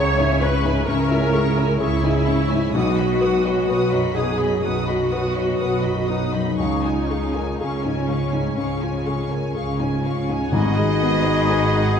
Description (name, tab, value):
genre	cinematic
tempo	59-65 BPM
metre	4/4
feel	rubato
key	unclear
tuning	A4 = 440 Hz
part	warm symphonic violin section	melody	0.0-12.0 s	F#5 to D#6	-32 LUFS	left 4 dB	none
part	warm symphonic violin section	second line	0.0-11.9 s	G#4 to G#5	-29 LUFS	left 2 dB	none
part	dark symphonic viola section	accompaniment	0.0-12.0 s	C#4 to D#5	-24 LUFS	equal	none
part	felt-muted upright piano	accompaniment	0.0-12.0 s	B1 to C#5	-25 LUFS	left 3 dB	none
part	concert harp	arpeggios	0.0-12.0 s	G#2 to G#5	-31 LUFS	left 7 dB	none
part	rich symphonic cello section	bass	0.0-12.0 s	G#2 to C#3	-26 LUFS	right 3 dB	none
part	warm symphonic double bass section	bass	0.0-12.0 s	G#1 to C#2	-26 LUFS	right 3 dB	none
part	clear oboe	second line	10.5-12.0 s	G#4	-28 LUFS	right 1 dB	none
part	dark clarinet	second line	10.5-12.0 s	F#4	-27 LUFS	left 5 dB	none
part	silver concert flute	second line	10.5-12.0 s	B5	-28 LUFS	left 1 dB	none
part	mellow French horn section	sustained chords	10.5-12.0 s	D#3	-24 LUFS	left 3 dB	none
part	timpani	percussion	10.5-11.9 s	G#2	-26 LUFS	equal	none
room	wet scoring stage reverb, RT60 1.5 s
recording	dark, warm production, nothing above 11.0 kHz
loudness	-18 LUFS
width	side -7 dB against mid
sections	0.0-10.5 A section; 10.5-12.0 B section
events	none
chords	0.0 C#m; 2.8 B; 6.6 C#; 10.5 G#m7